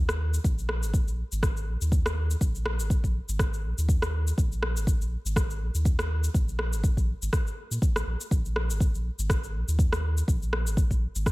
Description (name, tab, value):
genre	afro house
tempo	122 BPM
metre	4/4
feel	swing 55% on 16ths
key	unclear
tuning	A4 = 439 Hz
part	warm sub bass	bass	0.0-11.3 s	Ab1 to Bb2	-28 LUFS	equal	sidechain pumping
part	electronic rim click and cabasa	drums	0.1-11.3 s	none	-33 LUFS	equal	studio reverb
part	electronic kick drum	drums	0.4-11.3 s	none	-24 LUFS	equal	studio reverb
room	digital ambience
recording	none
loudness	-24 LUFS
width	side -20 dB against mid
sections	0.0-11.3 A section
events	none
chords	none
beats	| 0.45 0.94 1.43 1.92 | 2.41 2.90 3.40 3.89 | 4.38 4.87 5.36 5.85 | 6.35 6.84 7.33 7.82 | 8.31 8.80 9.30 9.79 | 10.28 10.77 11.26